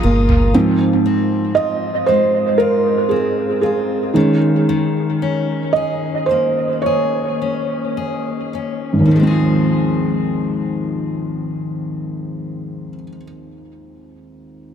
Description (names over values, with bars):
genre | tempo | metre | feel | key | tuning
pop ballad | 52-59 BPM | 4/4 | straight | Ab major | A4 = 441 Hz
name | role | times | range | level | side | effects
felt-muted upright piano | accompaniment | 0.0-14.7 s | Ab1 to Eb5 | -16 LUFS | right 2 dB | dub echo
muted studio string section | sustained chords | 0.0-0.5 s | Ab4 to Eb6 | -31 LUFS | left 4 dB | none
picked steel-string acoustic guitar | arpeggios | 0.0-13.3 s | Ab2 to Ab4 | -22 LUFS | left 6 dB | dub echo
deep dub fingered electric bass | bass | 0.0-0.5 s | G1 | -15 LUFS | equal | none
electronic toms | drums | 0.3-0.5 s | none | -20 LUFS | right 1 dB | dub echo
room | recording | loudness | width
moderate spring reverb, RT60 2.6 s | echo-heavy mix | -15 LUFS | side -8 dB against mid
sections
0.5-9.1 A section; 9.1-13.8 B section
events
slowing down 0.5-9.1; felt piano solo 0.5-9.1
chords
0.0 Bb7sus4; 0.5 Ab6; 4.2 Eb7sus4; 9.1 Ab6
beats
| 0.55 1.56 2.59 3.63 | 4.68 5.75 6.85 7.97 | 9.12 10.28 11.45 12.61